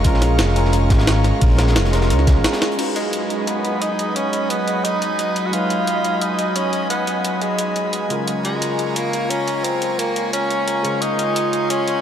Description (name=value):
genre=liquid drum and bass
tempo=175 BPM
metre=4/4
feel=straight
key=G# dorian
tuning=A4 = 440 Hz
part: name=barky tine electric piano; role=accompaniment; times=0.0-12.0 s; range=C#3 to B4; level=-24 LUFS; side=equal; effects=overdrive, analog chorus, low-pass filter, tape echo
part: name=airy breathy pad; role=sustained chords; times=0.0-12.0 s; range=F#3 to C#6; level=-23 LUFS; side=equal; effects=chorus, sidechain pumping
part: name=smooth gliding synth bass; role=bass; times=0.0-2.4 s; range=E#1 to C#2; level=-17 LUFS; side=equal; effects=tube saturation
part: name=crunchy breakbeat drum kit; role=drums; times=0.0-2.8 s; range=hi-hat, snare drum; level=-31 LUFS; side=equal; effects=none
part: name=electronic kick drum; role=drums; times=0.0-2.3 s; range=none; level=-16 LUFS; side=equal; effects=none
part: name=jungle sampler-style drum kit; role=drums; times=0.0-11.9 s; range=crash cymbal, hi-hat, snare drum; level=-24 LUFS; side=equal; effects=none
part: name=clear tenor saxophone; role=melody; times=3.0-12.0 s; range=G#3 to F#4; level=-22 LUFS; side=equal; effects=tape echo
room=wet huge ambient reverb, RT60 8.6 s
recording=dreamy mix soaked in reverb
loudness=-17 LUFS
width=side -9 dB against mid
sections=0.0-2.8 A section; 2.8-12.0 B section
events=break 2.4-2.8; drum fill 2.6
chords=0.0 A#m7; 2.8 G#m7; 8.1 A#m7